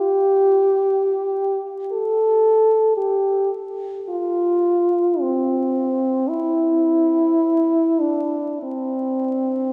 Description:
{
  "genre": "classical, free, expressive piece for unaccompanied French horn",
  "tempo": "46-60 BPM",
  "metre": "4/4",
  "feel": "rubato",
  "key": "C major",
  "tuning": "A4 = 439 Hz",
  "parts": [
    { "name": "warm French horn", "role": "solo", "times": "0.0-9.7 s", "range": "C4 to A4", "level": "-20 LUFS", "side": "equal", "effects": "none" }
  ],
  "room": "wet cathedral reverb, RT60 4.8 s",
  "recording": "recorded in a church or concert hall, vinyl crackle",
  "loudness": "-20 LUFS",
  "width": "mono",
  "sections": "0.0-9.7 A section",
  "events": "none",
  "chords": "none"
}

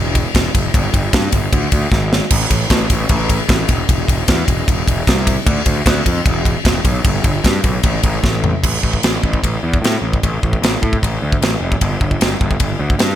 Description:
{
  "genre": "heavy metal",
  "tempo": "152 BPM",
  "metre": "4/4",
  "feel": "straight",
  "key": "A minor",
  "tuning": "A4 = 440 Hz",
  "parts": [
    { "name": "fuzz picked electric bass", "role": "bass", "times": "0.0-13.1 s", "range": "E1 to A2", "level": "-18 LUFS", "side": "equal", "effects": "overdrive" },
    { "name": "modern studio drum kit", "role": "drums", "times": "0.2-13.1 s", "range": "crash cymbal, kick drum, ride cymbal, snare drum, toms", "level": "-15 LUFS", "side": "equal", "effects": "none" }
  ],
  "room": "light reverb",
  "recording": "none",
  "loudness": "-13 LUFS",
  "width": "side -11 dB against mid",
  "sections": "0.0-8.6 A section; 8.6-13.2 B section",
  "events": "drum fill 1.9-2.3, 8.2-8.6",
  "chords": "none"
}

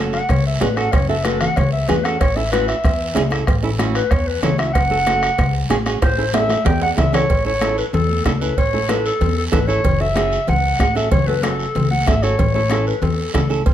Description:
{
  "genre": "latin, cumbia",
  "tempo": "188 BPM",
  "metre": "4/4",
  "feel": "straight",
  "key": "A major",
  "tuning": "A4 = 438 Hz",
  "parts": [
    { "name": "flamenco guitar", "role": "accompaniment", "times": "0.0-13.6 s", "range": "C#4 to A4", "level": "-24 LUFS", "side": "right 5 dB", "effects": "none" },
    { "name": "upright bass", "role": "bass", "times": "0.0-13.7 s", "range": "F#1 to E2", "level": "-21 LUFS", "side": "left 1 dB", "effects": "none" },
    { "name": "mellow clarinet", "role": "melody", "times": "0.1-13.5 s", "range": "A4 to G5", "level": "-20 LUFS", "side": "left 1 dB", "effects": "plate reverb" },
    { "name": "bombo", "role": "percussion", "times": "0.1-13.7 s", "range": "none", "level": "-21 LUFS", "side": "equal", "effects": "none" },
    { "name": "congas", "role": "percussion", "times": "0.1-13.7 s", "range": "none", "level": "-25 LUFS", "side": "left 3 dB", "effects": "none" },
    { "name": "guiro", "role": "percussion", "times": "0.1-13.7 s", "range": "none", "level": "-33 LUFS", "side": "right 5 dB", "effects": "none" },
    { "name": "cowbell and timbales", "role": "percussion", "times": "0.3-13.7 s", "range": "none", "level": "-28 LUFS", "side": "right 6 dB", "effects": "none" }
  ],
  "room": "light reverb",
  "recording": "none",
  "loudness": "-15 LUFS",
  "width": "side -11 dB against mid",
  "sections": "0.0-7.3 A section; 7.3-13.7 B section",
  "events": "clarinet solo 0.0-7.3; drum fill 6.0-7.3",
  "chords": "0.0 F#m; 2.2 A; 4.8 F#m; 6.0 A; 9.8 F#m; 12.4 A"
}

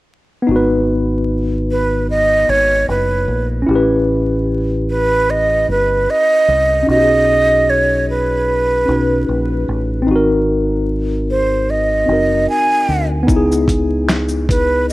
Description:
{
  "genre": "lo-fi hip hop",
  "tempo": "75 BPM",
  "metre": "4/4",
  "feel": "swing 56% on 16ths",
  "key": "G# minor",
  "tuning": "A4 = 438 Hz",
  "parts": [
    { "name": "mellow tine electric piano", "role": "accompaniment", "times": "0.4-14.9 s", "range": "B3 to B4", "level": "-18 LUFS", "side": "left 1 dB", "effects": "medium stereo tremolo, cassette tape" },
    { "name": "deep dub fingered electric bass", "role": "bass", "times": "0.5-14.9 s", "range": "F#1 to D2", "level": "-20 LUFS", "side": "equal", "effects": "none" },
    { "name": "breathy mellow silver concert flute", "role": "melody", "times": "1.7-14.9 s", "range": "B4 to G#5", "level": "-14 LUFS", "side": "right 2 dB", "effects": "none" },
    { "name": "dusty soul sampler-style drum kit", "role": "drums", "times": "13.3-14.9 s", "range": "finger snaps, hi-hat, kick drum, shaker, snare drum", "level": "-17 LUFS", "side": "equal", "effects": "none" }
  ],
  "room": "light reverb",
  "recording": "vinyl crackle",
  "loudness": "-13 LUFS",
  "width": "side -18 dB against mid",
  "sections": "0.5-14.9 A section",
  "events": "none",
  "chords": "0.5 G#m7; 3.7 A9; 6.9 B6; 10.1 G#7; 13.3 C#m7"
}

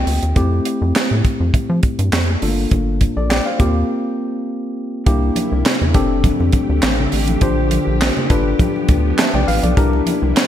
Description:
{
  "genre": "early-eighties boogie funk",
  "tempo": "102 BPM",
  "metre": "4/4",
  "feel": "straight",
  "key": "F major",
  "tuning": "A4 = 439 Hz",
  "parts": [
    { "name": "tine electric piano", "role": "accompaniment", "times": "0.0-10.5 s", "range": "A3 to A5", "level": "-20 LUFS", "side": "left 3 dB", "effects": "none" },
    { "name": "rubbery square bass", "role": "bass", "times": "0.0-10.3 s", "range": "F1 to F3", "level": "-18 LUFS", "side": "equal", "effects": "none" },
    { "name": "tight funk drum kit", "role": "drums", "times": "0.1-10.5 s", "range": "handclaps, hi-hat, kick drum, snare drum", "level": "-18 LUFS", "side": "right 1 dB", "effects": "gated reverb" },
    { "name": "soft string machine", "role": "sustained chords", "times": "5.3-10.5 s", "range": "D3 to G4", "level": "-25 LUFS", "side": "equal", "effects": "ensemble chorus" },
    { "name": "congas", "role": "percussion", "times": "5.4-10.2 s", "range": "none", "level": "-25 LUFS", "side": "right 2 dB", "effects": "none" }
  ],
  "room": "light reverb, small room ambience",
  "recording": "bright 1980s-style digital production",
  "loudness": "-14 LUFS",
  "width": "side -10 dB against mid",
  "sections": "0.0-5.1 A section; 5.1-10.5 B section",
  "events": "tine electric piano fill 0.0-0.4; break 3.9-5.1",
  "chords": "0.4 Fmaj7; 2.4 Gm7; 3.6 Eb6; 5.1 C7; 5.9 F69; 7.4 Bb6; 8.3 G7; 9.8 C7"
}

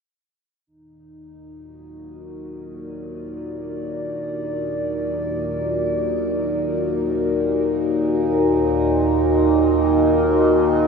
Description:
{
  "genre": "dark ambient drone",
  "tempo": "free time",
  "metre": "none",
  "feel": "none",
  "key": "Eb harmonic minor",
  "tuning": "A4 = 440 Hz",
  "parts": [
    { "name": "dark analog pad", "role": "sustained chords", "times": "1.5-10.9 s", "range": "Eb4 to Eb5", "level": "-20 LUFS", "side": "equal", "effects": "chorus, shimmer reverb" },
    { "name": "overtone-sweeping drone", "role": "drone", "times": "2.0-10.9 s", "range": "Eb2 to Bb2", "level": "-26 LUFS", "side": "left 1 dB", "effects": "chorus, built-in reverb, phaser" }
  ],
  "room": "wet lush hall reverb, RT60 2.8 s",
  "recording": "dreamy mix soaked in reverb",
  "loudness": "-18 LUFS",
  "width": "side -5 dB against mid",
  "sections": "0.7-10.9 A section",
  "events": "fade-in on synth drone 0.7-10.9",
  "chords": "0.7 Ebm"
}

